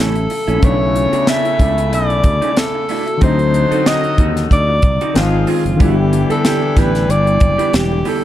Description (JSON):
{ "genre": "lush 1970s-style soul", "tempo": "93 BPM", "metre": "4/4", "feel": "swing 54% on 16ths", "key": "B minor", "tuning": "A4 = 441 Hz", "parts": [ { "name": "breathy alto saxophone", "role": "melody", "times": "0.0-8.2 s", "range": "E#4 to E5", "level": "-18 LUFS", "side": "equal", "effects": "none" }, { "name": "warm grand piano", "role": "accompaniment", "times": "0.0-8.2 s", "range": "C#3 to E#4", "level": "-20 LUFS", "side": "left 3 dB", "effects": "none" }, { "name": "electric guitar through a small old amp", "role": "riff", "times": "0.0-8.2 s", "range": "A3 to A4", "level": "-23 LUFS", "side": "right 5 dB", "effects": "none" }, { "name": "fingered electric bass", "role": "bass", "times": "0.0-8.0 s", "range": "E1 to Eb2", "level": "-18 LUFS", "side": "equal", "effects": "none" }, { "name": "tight funk drum kit", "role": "drums", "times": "0.2-8.2 s", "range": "hi-hat, kick drum, snare drum", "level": "-16 LUFS", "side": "equal", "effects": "none" }, { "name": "warm horn section", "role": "stabs", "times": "0.6-8.0 s", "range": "C#3 to A4", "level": "-24 LUFS", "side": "left 2 dB", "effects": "none" }, { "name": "vibraphone with medium hard mallets", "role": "texture", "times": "2.9-8.2 s", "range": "G3 to F#4", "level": "-28 LUFS", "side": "left 3 dB", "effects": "none" } ], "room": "light reverb", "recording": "dark, warm production", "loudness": "-12 LUFS", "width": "side -12 dB against mid", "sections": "0.0-8.2 A section", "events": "none", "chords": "0.0 F#m7; 0.6 Bm11; 3.2 D7b9; 5.2 G#6; 5.8 G6" }